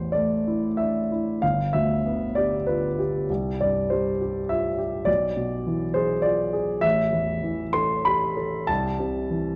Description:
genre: classical, romantic character piece for solo piano.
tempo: 99 BPM.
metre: 3/4.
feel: uneven beats, rubato.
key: A minor.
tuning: A4 = 440 Hz.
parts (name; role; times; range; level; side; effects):
warm baby grand piano; solo; 0.0-9.6 s; G1 to C6; -24 LUFS; equal; none.
room: moderate recital hall reverb, RT60 1.6 s.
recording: dark, warm production.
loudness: -25 LUFS.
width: mono.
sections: 0.0-9.6 A section.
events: none.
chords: 0.0 A5; 1.4 G; 3.3 C; 5.1 E7/B; 6.8 A5; 8.7 Am/C.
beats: 0.13 0.78 | 1.42 2.05 2.66 | 3.29 3.91 4.50 | 5.07 5.67 6.25 | 6.84 7.44 8.07 | 8.69 9.30.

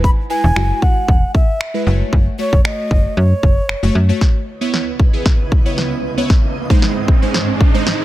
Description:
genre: dance-pop.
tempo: 115 BPM.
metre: 4/4.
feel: straight.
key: C# minor.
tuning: A4 = 440 Hz.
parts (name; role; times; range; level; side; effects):
breathy alto ocarina; melody; 0.0-4.0 s; C#5 to B5; -22 LUFS; equal; tape echo.
glassy digital keys; accompaniment; 0.0-8.0 s; G#3 to C#5; -22 LUFS; right 1 dB; chorus, sidechain pumping.
slap-like FM bass; bass; 0.0-4.1 s; E1 to F#2; -15 LUFS; equal; sidechain pumping.
house drum kit; drums; 0.0-8.0 s; finger snaps, kick drum, snare drum; -14 LUFS; equal; soft clipping on snare.
granular cloud pad; sustained chords; 4.8-8.0 s; C#2 to D#5; -23 LUFS; right 1 dB; built-in reverb, sidechain pumping.
riser; sound effects; 5.2-8.0 s; none; -26 LUFS; right 4 dB; none.
room: little or no reverb.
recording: dense, heavily limited modern master.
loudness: -13 LUFS.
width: side -15 dB against mid.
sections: 0.0-4.2 A section; 4.2-8.0 B section.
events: build-up 4.2-8.0; drum fill 4.2-8.0; riser 5.2-8.0.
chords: 0.0 E; 1.9 F#m; 4.2 C#m7; 6.3 G#.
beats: | 0.04 0.56 1.08 1.61 | 2.13 2.65 3.17 3.69 | 4.21 4.74 5.26 5.78 | 6.30 6.82 7.34 7.87.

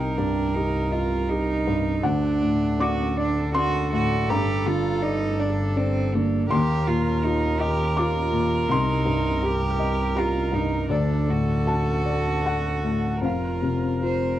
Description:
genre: neoclassical piano and strings.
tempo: 81 BPM.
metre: 3/4.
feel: rubato.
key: unclear.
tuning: A4 = 440 Hz.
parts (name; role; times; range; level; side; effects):
rich cello; second line; 0.0-14.4 s; Bb3 to C5; -27 LUFS; right 4 dB; none.
felt-muted upright piano; accompaniment; 0.0-14.4 s; C2 to D6; -25 LUFS; left 2 dB; none.
warm viola; accompaniment; 0.0-14.4 s; A4 to Bb4; -30 LUFS; right 2 dB; none.
warm double bass; bass; 0.0-14.4 s; F1 to Eb2; -27 LUFS; equal; none.
room: light reverb.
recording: dry, close 1970s-style studio recording.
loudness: -21 LUFS.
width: side -12 dB against mid.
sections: 0.0-14.4 A section.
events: none.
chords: 0.0 Cm7; 2.0 D; 4.3 Gmadd9; 6.5 Ebsus2; 8.7 Cm7; 10.9 D; 13.2 Fsus4.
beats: 0.55 1.29 | 2.04 2.80 3.55 | 4.29 5.03 5.77 | 6.51 7.24 7.98 | 8.71 9.45 10.18 | 10.91 11.69 12.45 | 13.24 14.03.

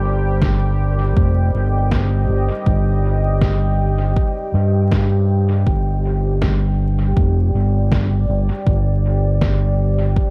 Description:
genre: ambient dub.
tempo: 80 BPM.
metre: 4/4.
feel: straight.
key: unclear.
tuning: A4 = 439 Hz.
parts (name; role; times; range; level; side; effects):
deep dark ambient pad; sustained chords; 0.0-10.3 s; G3 to G5; -26 LUFS; equal; chorus, built-in reverb.
overdriven fingered electric bass; bass; 0.0-10.1 s; F1 to G2; -19 LUFS; equal; none.
electronic kick drum; drums; 0.4-10.3 s; none; -22 LUFS; equal; overdrive.
electronic snare drum; drums; 0.4-9.6 s; none; -29 LUFS; equal; dub echo.
room: light reverb.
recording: vinyl crackle.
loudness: -17 LUFS.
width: mono.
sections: 0.0-10.3 A section.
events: none.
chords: 0.0 Cm.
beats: 0.42 1.17 1.92 | 2.67 3.42 4.17 4.92 | 5.67 6.42 7.17 7.92 | 8.67 9.42 10.17.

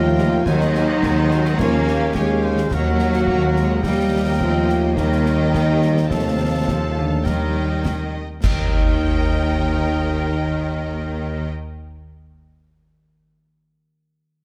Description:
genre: cinematic, heroic adventure film score.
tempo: 106 BPM.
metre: 4/4.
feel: straight.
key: unclear.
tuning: A4 = 438 Hz.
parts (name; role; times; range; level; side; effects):
rich studio violin section; melody; 0.0-11.5 s; F5 to Bb5; -37 LUFS; equal; none.
dark clarinet; second line; 0.0-11.5 s; F3 to Eb5; -32 LUFS; equal; none.
large flute ensemble; second line; 0.0-11.5 s; F5 to G5; -35 LUFS; equal; none.
warm oboe; second line; 0.0-11.5 s; A4 to Db5; -34 LUFS; equal; none.
warm symphonic violin section; second line; 0.0-11.5 s; F4 to G5; -36 LUFS; equal; none.
mellow French horn section; sustained chords; 0.0-11.5 s; C4 to Bb4; -27 LUFS; equal; none.
concert harp; arpeggios; 0.0-12.4 s; Eb3 to G5; -35 LUFS; equal; none.
rich symphonic cello section; bass; 0.0-11.5 s; C3 to Bb3; -29 LUFS; equal; none.
warm symphonic double bass section; bass; 0.0-11.5 s; Eb2; -25 LUFS; equal; none.
warm tuba; bass; 0.0-11.5 s; Eb2; -27 LUFS; equal; none.
rich symphonic viola section; accompaniment; 0.2-11.5 s; F3 to Bb4; -33 LUFS; equal; none.
concert snare drum, concert bass drum and clash cymbals; drums; 0.2-8.8 s; none; -29 LUFS; equal; none.
clash cymbals and concert bass drum; percussion; 8.4-9.5 s; none; -26 LUFS; equal; none.
room: light reverb.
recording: close, detailed microphones.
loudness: -19 LUFS.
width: mono.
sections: 0.0-8.4 A section; 8.4-10.7 B section.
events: band accent 8.4-9.0.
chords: 0.5 Ab7/Eb; 1.6 Db/Eb; 2.7 Gb/Eb; 3.8 Eb; 6.1 F/Eb; 7.3 Eb.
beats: 0.47 1.04 | 1.60 2.16 2.72 3.28 | 3.84 4.41 4.98 5.54 | 6.11 6.68 7.26 7.85 | 8.44 9.01 9.58 10.15.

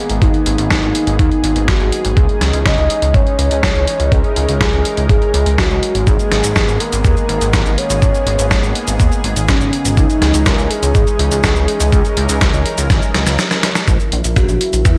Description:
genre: italo disco.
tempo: 123 BPM.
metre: 4/4.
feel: straight.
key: unclear.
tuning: A4 = 441 Hz.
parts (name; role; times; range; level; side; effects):
soft octave-layered synth lead; melody; 0.0-15.0 s; C#4 to D#5; -21 LUFS; equal; chorus, tremolo, cassette tape, digital delay.
lush unison pad; sustained chords; 0.0-15.0 s; C#3 to A#4; -26 LUFS; equal; chorus.
chorused synth bass; bass; 0.1-15.0 s; G#1 to E2; -19 LUFS; equal; none.
dusty soul sampler-style drum kit; drums; 0.1-14.9 s; cabasa, hi-hat, snare drum, toms; -22 LUFS; equal; high-pass filter on hats, small room ambience, high-pass filter on snare, high-pass filter on cymbals, high-pass filter on perc, high-pass filter on toms, gated reverb.
electronic kick drum; drums; 0.2-14.9 s; none; -17 LUFS; equal; small room ambience.
room: light reverb, digital ambience.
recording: none.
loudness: -14 LUFS.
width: mono.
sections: 0.0-13.9 A section; 13.9-15.0 B section.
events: drum fill 13.1-13.9, 13.9-15.0; filter sweep on analog synth pad 13.9-15.0.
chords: 0.0 G#madd9; 2.2 C#madd9; 6.1 G#madd9; 10.0 C#madd9; 13.9 A#dim.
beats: | 0.22 0.70 1.19 1.68 | 2.17 2.66 3.14 3.63 | 4.12 4.61 5.09 5.58 | 6.07 6.56 7.05 7.53 | 8.02 8.51 9.00 9.48 | 9.97 10.46 10.95 11.44 | 11.92 12.41 12.90 13.39 | 13.88 14.36 14.85.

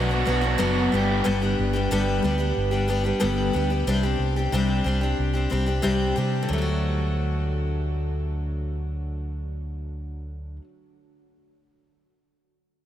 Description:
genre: folk rock and heartland rock.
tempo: 92 BPM.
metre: 4/4.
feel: straight.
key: D major.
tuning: A4 = 440 Hz.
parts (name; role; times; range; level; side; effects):
picked steel-string acoustic guitar; accompaniment; 0.0-10.7 s; G2 to G4; -25 LUFS; left 2 dB; none.
raw garage guitar; riff; 0.0-1.3 s; G2 to G4; -28 LUFS; right 2 dB; overdrive.
picked electric bass; bass; 0.0-10.6 s; F#1 to C3; -26 LUFS; right 1 dB; none.
room: moderate huge ambient reverb, RT60 5.0 s.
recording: dreamy mix soaked in reverb.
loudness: -22 LUFS.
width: side -11 dB against mid.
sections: 0.0-6.5 A section; 6.5-9.1 B section.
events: none.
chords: 0.0 Bm; 0.9 G; 3.9 Csus2; 6.5 D.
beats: 0.60 | 1.25 1.90 2.56 3.21 | 3.87 4.52 5.18 5.83 | 6.49 7.14 7.80 8.46.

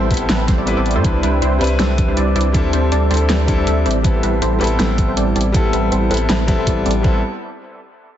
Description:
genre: future bass.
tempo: 160 BPM.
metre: 4/4.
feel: half-time.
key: A minor.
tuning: A4 = 440 Hz.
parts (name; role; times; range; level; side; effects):
bright concert grand piano; accompaniment; 0.0-7.2 s; G3 to B4; -22 LUFS; left 3 dB; sidechain pumping, dub echo.
supersaw stab; riff; 0.0-7.2 s; G3 to E5; -20 LUFS; right 1 dB; sidechain pumping, low-pass filter, dub echo.
saturated sub bass; bass; 0.0-7.2 s; A1 to A2; -19 LUFS; equal; tube saturation, sidechain pumping.
electronic kick drum; drums; 0.1-7.1 s; none; -18 LUFS; equal; overdrive.
pop drum kit; drums; 0.1-7.0 s; hi-hat, snare drum; -22 LUFS; equal; overdrive.
room: light reverb, digital ambience.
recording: heavily compressed radio sound, multiband compression, nothing above 7.9 kHz.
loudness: -14 LUFS.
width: side -11 dB against mid.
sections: 0.0-7.0 A section; 7.0-8.2 B section.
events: filter sweep on supersaw synth 0.0-7.0.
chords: 0.0 Am9; 1.0 Cmaj9; 2.5 D7sus4; 3.9 Am9.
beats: 0.29 0.67 | 1.04 1.42 1.79 2.17 | 2.54 2.92 3.29 3.67 | 4.04 4.42 4.79 5.17 | 5.54 5.92 6.29 6.67 | 7.04.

